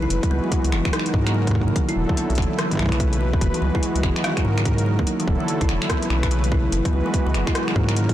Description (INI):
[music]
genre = IDM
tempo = 145 BPM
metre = 4/4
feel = swing 62% on 16ths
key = F# minor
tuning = A4 = 441 Hz
[part]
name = warm analog pad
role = sustained chords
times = 0.0-8.1 s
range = C#3 to B4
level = -27 LUFS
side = right 2 dB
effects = chorus
[part]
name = kalimba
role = arpeggios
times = 0.0-8.0 s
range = D#3 to F#4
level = -26 LUFS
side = left 1 dB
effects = digital delay
[part]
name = rubbery square bass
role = bass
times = 0.0-8.1 s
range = E1 to G#2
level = -22 LUFS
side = equal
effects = tube saturation
[part]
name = electro analog drum machine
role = drums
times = 0.1-8.1 s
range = finger snaps, hi-hat, rim click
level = -29 LUFS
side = equal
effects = soft clipping on snare, digital delay
[part]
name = electronic kick drum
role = drums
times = 0.2-8.1 s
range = none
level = -23 LUFS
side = equal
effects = none
[sound]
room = little or no reverb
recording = blown-out, overdriven recording, overdrive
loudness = -19 LUFS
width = side -13 dB against mid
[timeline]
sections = 0.0-8.1 A section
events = none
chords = 0.1 F#9sus4; 0.9 G#9sus4; 1.8 E9sus4; 2.6 B9sus4; 3.4 F#9sus4; 4.2 G#9sus4; 5.1 E9sus4; 5.9 B9sus4; 6.7 F#9sus4; 7.6 G#9sus4